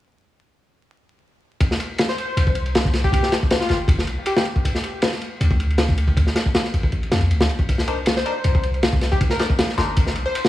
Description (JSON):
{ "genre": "drum and bass, jungle", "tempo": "158 BPM", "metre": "4/4", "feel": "straight", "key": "C dorian", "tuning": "A4 = 438 Hz", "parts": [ { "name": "crunchy breakbeat drum kit", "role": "drums", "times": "1.6-10.5 s", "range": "kick drum, ride cymbal, snare drum", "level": "-20 LUFS", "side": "equal", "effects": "none" }, { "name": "plucky unison lead", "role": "melody", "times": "2.1-4.4, 8.2-10.5 s", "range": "F4 to C5", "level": "-26 LUFS", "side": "left 2 dB", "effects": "dub echo" }, { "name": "warm 808-style bass", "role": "bass", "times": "2.4-10.2 s", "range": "G1 to F2", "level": "-21 LUFS", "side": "equal", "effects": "none" }, { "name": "band-passed chord stab", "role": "stabs", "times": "7.9-10.5 s", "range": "D4 to C5", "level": "-28 LUFS", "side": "left 3 dB", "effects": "phaser, vintage 12-bit sampler grit, dub echo" } ], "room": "little or no reverb", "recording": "vinyl crackle, small room ambience", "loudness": "-18 LUFS", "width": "side -14 dB against mid", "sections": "1.6-10.5 A section", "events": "none", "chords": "1.6 C5; 4.6 D5; 7.7 Cm9" }